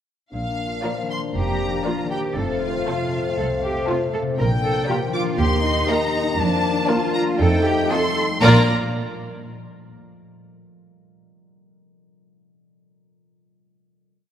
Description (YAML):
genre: cinematic, playful, whimsical film cue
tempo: 119 BPM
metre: 4/4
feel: straight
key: Bb major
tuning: A4 = 440 Hz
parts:
  - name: warm studio violin section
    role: melody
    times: 0.3-8.7 s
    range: F5 to D6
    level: -26 LUFS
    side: left 2 dB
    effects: none
  - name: mellow French horn section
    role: sustained chords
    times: 0.3-8.6 s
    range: A3 to G4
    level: -26 LUFS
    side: left 3 dB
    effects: none
  - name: concert harp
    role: arpeggios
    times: 0.3-10.5 s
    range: F2 to Eb5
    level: -29 LUFS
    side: left 5 dB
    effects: none
  - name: dark studio double bass section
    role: bass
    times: 0.3-8.7 s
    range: F1 to F2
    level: -23 LUFS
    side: right 2 dB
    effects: none
  - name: rich studio violin section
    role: second line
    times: 0.8-8.7 s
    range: A4 to Eb5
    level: -26 LUFS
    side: left 1 dB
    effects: none
  - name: rich studio viola section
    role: accompaniment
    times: 0.8-8.7 s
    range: Bb3 to G4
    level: -26 LUFS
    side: right 1 dB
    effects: none
  - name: rich studio cello section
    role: bass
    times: 1.4-8.7 s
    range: Bb2 to Bb4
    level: -25 LUFS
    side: right 2 dB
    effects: none
room: wet concert hall reverb, RT60 2.4 s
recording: none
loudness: -18 LUFS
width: side -10 dB against mid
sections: 0.3-8.4 A section; 8.4-10.4 final chord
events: none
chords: 0.3 Bb; 2.4 F; 4.4 Bb; 5.4 Eb; 6.4 Bb/F; 7.4 F9; 8.4 Bb